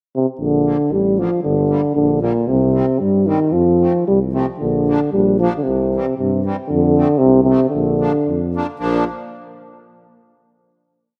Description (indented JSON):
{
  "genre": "alpine folk, alpine dance band",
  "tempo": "114 BPM",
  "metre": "2/4",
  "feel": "rubato",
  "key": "Bb major",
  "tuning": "A4 = 440 Hz",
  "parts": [
    { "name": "mellow euphonium", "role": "melody", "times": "0.2-9.1 s", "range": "Bb2 to G3", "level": "-18 LUFS", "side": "equal", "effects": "none" },
    { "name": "mellow tuba", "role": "bass", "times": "0.4-9.1 s", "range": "G1 to G2", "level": "-22 LUFS", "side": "equal", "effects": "none" },
    { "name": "accordion", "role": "accompaniment", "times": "0.7-9.0 s", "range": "D3 to D4", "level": "-29 LUFS", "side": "equal", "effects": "light tremolo tuning" }
  ],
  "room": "moderate lush hall reverb, RT60 2.5 s",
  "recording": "rough home demo mix",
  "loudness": "-17 LUFS",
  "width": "mono",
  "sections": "0.0-0.4 pickup bar; 0.4-8.8 A section; 8.8-9.8 final chord",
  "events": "none",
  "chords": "0.4 Bb; 1.4 Gm; 2.5 Cm; 3.5 F; 4.6 Bb; 5.7 C; 6.7 F; 7.7 Bb"
}